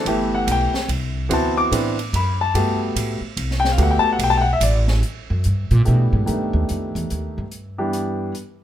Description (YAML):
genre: jazz piano trio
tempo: 145 BPM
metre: 3/4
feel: swing 64% on 8ths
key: G major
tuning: A4 = 438 Hz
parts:
  - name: warm grand piano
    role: melody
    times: 0.0-8.3 s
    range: D#3 to D6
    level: -20 LUFS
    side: left 2 dB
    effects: none
  - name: upright bass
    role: bass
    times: 0.0-8.3 s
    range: G1 to B2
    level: -20 LUFS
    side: equal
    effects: none
  - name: open jazz drum kit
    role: drums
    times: 0.1-8.5 s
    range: hi-hat, kick drum, ride cymbal, snare drum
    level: -29 LUFS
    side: right 4 dB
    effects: none
room: moderate club reverb, RT60 0.8 s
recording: minimal, uncompressed stereo recording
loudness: -18 LUFS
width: side -11 dB against mid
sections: 0.0-5.0 A section; 5.0-8.6 A section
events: grand piano solo 0.0-5.0; upright bass solo 5.0-8.6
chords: 0.1 G69; 1.3 D13; 2.5 Gmaj9; 5.0 G69; 6.3 B7alt; 7.5 Em7